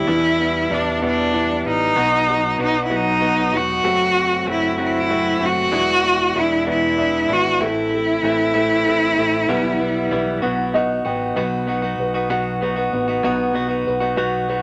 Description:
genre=six-eight pop ballad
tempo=64 BPM (dotted quarters)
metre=6/8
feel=straight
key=unclear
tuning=A4 = 439 Hz
part: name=clear cello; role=melody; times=0.0-10.8 s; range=D4 to F#4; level=-20 LUFS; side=equal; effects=none
part: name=dark upright piano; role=accompaniment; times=0.0-14.6 s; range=B2 to G5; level=-26 LUFS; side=equal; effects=none
part: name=direct-recorded clean electric guitar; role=arpeggios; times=0.0-14.6 s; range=E2 to F#4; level=-26 LUFS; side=equal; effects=none
part: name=fingered electric bass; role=bass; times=0.0-14.6 s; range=E1 to E2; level=-33 LUFS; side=equal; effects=none
room=moderate studio reverb, RT60 0.7 s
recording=tube saturation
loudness=-19 LUFS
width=mono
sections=0.0-11.4 A section; 11.4-14.6 B section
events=upright piano fill 10.4-11.4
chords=0.1 Em7; 2.0 B; 3.8 F#dim; 5.7 E7; 7.6 Am; 9.5 Em/B; 10.4 B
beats=| 0.09 1.03 | 1.97 2.91 | 3.85 4.79 | 5.73 6.67 | 7.61 8.55 | 9.49 10.43 | 11.37 12.30 | 13.24 14.18

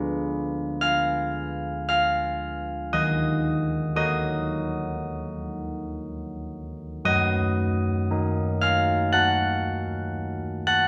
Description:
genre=classical, tune for church bells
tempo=58 BPM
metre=4/4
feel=straight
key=Eb minor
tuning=A4 = 441 Hz
part: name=carillon bells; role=solo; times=0.0-10.9 s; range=Eb3 to Gb6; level=-26 LUFS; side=equal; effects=none
room=wet recital hall reverb, RT60 1.5 s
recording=recorded in a church or concert hall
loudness=-25 LUFS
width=mono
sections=0.0-10.9 A section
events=none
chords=0.0 Ddim7; 2.9 Ebm; 7.1 Ebm/Gb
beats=0.81 1.88 | 2.92 3.96 5.00 6.02 | 7.05 8.09 9.12 10.15

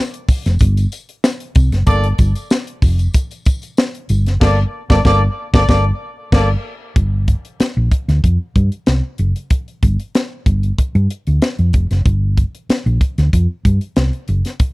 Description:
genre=funk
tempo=94 BPM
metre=4/4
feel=straight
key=G minor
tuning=A4 = 439 Hz
part: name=crisp fusion drum kit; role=drums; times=0.1-14.7 s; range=crash cymbal, hi-hat, kick drum, snare drum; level=-14 LUFS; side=equal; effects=none
part: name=hollow-body short-scale fingered electric bass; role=bass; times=0.3-14.4 s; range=F1 to G2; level=-14 LUFS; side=equal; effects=none
part: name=tambourine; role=percussion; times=0.3-4.2 s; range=none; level=-37 LUFS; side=left 4 dB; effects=none
part: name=warm horn section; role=second line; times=1.9-6.5 s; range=Bb3 to D5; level=-19 LUFS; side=equal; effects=tape echo
room=small room reverb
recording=dry, close 1970s-style studio recording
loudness=-14 LUFS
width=side -22 dB against mid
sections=0.0-7.0 A section; 7.0-14.7 B section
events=band accent 4.4-7.0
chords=0.0 G5; 7.0 G7(no3)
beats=0.61 1.24 | 1.88 2.51 3.15 3.78 | 4.42 5.05 5.69 6.32 | 6.96 7.60 8.23 8.87 | 9.51 10.14 10.78 11.42 | 12.05 12.69 13.33 13.96 | 14.60

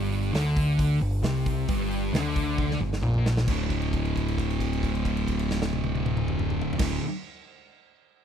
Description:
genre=blues rock power trio and southern rock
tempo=134 BPM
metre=4/4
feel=straight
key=unclear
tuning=A4 = 440 Hz
part: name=thick fuzz guitar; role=riff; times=0.0-7.0 s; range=D2 to D3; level=-26 LUFS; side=equal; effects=distortion
part: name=growling picked electric bass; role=bass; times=0.0-7.0 s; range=D1 to D2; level=-30 LUFS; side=equal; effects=overdrive
part: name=big rock drum kit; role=drums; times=0.1-6.9 s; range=crash cymbal, hi-hat, kick drum, snare drum, toms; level=-31 LUFS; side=equal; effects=none
room=small room ambience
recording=dry, close 1970s-style studio recording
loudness=-24 LUFS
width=side -8 dB against mid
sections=0.0-3.5 A section; 3.5-7.1 B section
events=drum fill 2.6-3.5; held note 3.5-6.8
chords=0.0 G5; 3.5 D5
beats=0.34 0.79 1.23 | 1.68 2.13 2.58 3.03 | 3.47 3.92 4.37 4.82 | 5.26 5.71 6.16 6.61

